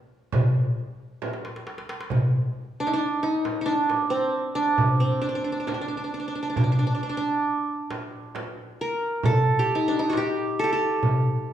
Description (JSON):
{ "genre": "Arabic maqam ensemble", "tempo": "135 BPM (eighths)", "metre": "10/8", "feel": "straight", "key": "D maqam hijaz", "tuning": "A4 = 440 Hz", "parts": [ { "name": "qanun", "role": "melody", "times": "0.0-11.5 s", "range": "C4 to D5", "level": "-24 LUFS", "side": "right 2 dB", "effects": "none" }, { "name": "darbuka", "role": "percussion", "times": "0.3-11.2 s", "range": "none", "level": "-26 LUFS", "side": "equal", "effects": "none" }, { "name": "frame drum", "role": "percussion", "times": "0.3-11.2 s", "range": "none", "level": "-28 LUFS", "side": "right 1 dB", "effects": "none" } ], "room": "wet recital hall reverb, RT60 1.4 s", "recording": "recorded in a church or concert hall, small room ambience", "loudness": "-22 LUFS", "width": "side -10 dB against mid", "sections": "0.0-2.1 A section; 2.1-11.5 B section", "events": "drum fill 1.2-2.1", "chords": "none" }